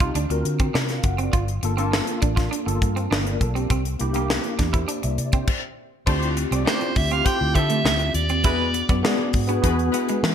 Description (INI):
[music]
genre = polished 1980s jazz-funk pop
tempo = 101 BPM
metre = 4/4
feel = straight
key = unclear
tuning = A4 = 440 Hz
[part]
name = tine electric piano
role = accompaniment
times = 0.0-10.3 s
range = Bb3 to F#5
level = -26 LUFS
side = left 2 dB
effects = overdrive, fast stereo tremolo, ensemble chorus
[part]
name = electric guitar at the edge of break-up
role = riff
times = 0.0-10.3 s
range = G#3 to F4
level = -30 LUFS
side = right 7 dB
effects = lush chorus
[part]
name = vintage muted fingered electric bass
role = bass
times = 0.0-10.3 s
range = F#1 to E3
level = -25 LUFS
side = equal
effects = none
[part]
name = crisp fusion drum kit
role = drums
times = 0.0-10.3 s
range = crash cymbal, hi-hat, kick drum, snare drum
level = -24 LUFS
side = left 1 dB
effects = gated reverb
[part]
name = warm horn section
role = second line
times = 6.1-10.2 s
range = F3 to D5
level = -30 LUFS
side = left 4 dB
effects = none
[part]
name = edgy soprano saxophone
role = melody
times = 6.7-9.0 s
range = C5 to G5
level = -25 LUFS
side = right 2 dB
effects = ping-pong delay
[sound]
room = light reverb, studio ambience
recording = bright 1980s-style digital production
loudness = -20 LUFS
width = side -8 dB against mid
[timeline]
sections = 0.0-6.1 A section; 6.1-10.3 B section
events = stop 5.5-6.1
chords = 0.1 D7alt; 1.3 Gm9; 3.7 C7; 6.1 Dm11; 8.4 E7